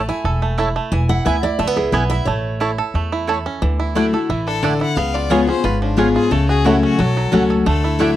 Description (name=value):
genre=bluegrass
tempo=178 BPM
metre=4/4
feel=straight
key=A major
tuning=A4 = 441 Hz
part: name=picked steel-string acoustic guitar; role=accompaniment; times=0.0-8.2 s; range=G#2 to G#5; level=-18 LUFS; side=left 3 dB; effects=none
part: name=bluegrass banjo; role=arpeggios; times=0.0-8.2 s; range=E3 to A4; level=-23 LUFS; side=right 6 dB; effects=none
part: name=upright bass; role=bass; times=0.0-8.2 s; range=E1 to E2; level=-21 LUFS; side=equal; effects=none
part: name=mandolin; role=stabs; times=0.6-8.1 s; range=A3 to A5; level=-21 LUFS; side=right 4 dB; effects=none
part: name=clear fiddle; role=second line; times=4.5-8.2 s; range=D4 to F#5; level=-23 LUFS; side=left 7 dB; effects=none
room=little or no reverb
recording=dry, close 1970s-style studio recording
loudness=-15 LUFS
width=side -13 dB against mid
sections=0.0-3.6 A section; 3.6-8.2 A section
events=steel-string acoustic guitar solo 0.0-3.6; fiddle solo 3.6-8.2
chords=0.0 A5; 0.9 E; 2.3 A; 3.6 Dadd9; 5.0 C#7; 6.3 F#m/C#